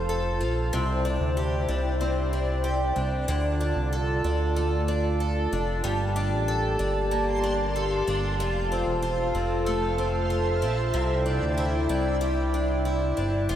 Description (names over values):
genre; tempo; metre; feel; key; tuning
dream pop; 94 BPM; 4/4; straight; unclear; A4 = 439 Hz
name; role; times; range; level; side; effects
warbly tape-like pad; sustained chords; 0.0-13.6 s; Bb3 to Bb5; -29 LUFS; right 1 dB; chorus, built-in reverb
picked twelve-string acoustic guitar; arpeggios; 0.0-13.6 s; C3 to A4; -29 LUFS; left 2 dB; lush chorus, analog delay
fat analog bass; bass; 0.0-13.6 s; E1 to D2; -27 LUFS; equal; none
room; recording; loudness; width
wet lush hall reverb, RT60 2.9 s; dreamy mix soaked in reverb; -23 LUFS; side -10 dB against mid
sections
0.0-13.6 A section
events
none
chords
0.0 F; 0.7 Cadd9; 3.3 Dm; 5.8 Gmadd9; 8.4 F; 10.9 Cadd9